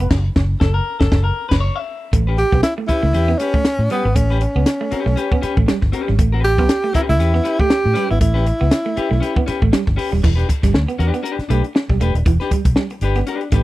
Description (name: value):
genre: funk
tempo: 118 BPM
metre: 4/4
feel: swing 56% on 16ths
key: unclear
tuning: A4 = 442 Hz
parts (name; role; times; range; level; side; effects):
- clean electric guitar; accompaniment; 0.0-13.6 s; C#4 to E5; -25 LUFS; left 5 dB; none
- semi-hollow electric guitar; riff; 0.0-13.6 s; E3 to B3; -25 LUFS; right 6 dB; none
- vintage muted fingered electric bass; bass; 0.0-13.6 s; D#1 to A2; -17 LUFS; equal; transformer saturation
- compact cocktail drum kit; drums; 0.1-13.6 s; crash cymbal, hi-hat, kick drum, snare drum; -18 LUFS; equal; none
- breathy tenor saxophone; melody; 2.4-9.7 s; B3 to G4; -20 LUFS; right 1 dB; none
room: studio ambience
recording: dry, close 1970s-style studio recording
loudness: -15 LUFS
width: side -17 dB against mid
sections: 0.0-2.1 A section; 2.1-10.2 B section; 10.2-13.6 C section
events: clean electric guitar solo 0.0-2.1; band accent 0.1-2.1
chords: 0.1 F#7#9; 2.1 A9; 10.2 Em7